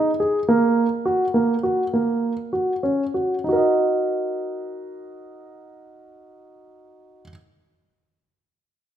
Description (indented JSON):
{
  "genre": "contemporary instrumental, contemporary",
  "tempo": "100 BPM",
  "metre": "5/4",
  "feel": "straight",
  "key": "Eb minor",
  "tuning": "A4 = 440 Hz",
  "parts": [
    { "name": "dark baby grand piano", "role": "arpeggios", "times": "0.0-7.3 s", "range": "Bb3 to Eb5", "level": "-20 LUFS", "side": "right 1 dB", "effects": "none" }
  ],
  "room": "moderate recital hall reverb, RT60 1.6 s",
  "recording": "none",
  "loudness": "-19 LUFS",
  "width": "side -10 dB against mid",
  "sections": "0.0-3.4 A section; 3.4-6.5 B section",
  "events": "slowing down 0.0-3.4",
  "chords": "0.5 N.C.; 3.4 Ebm"
}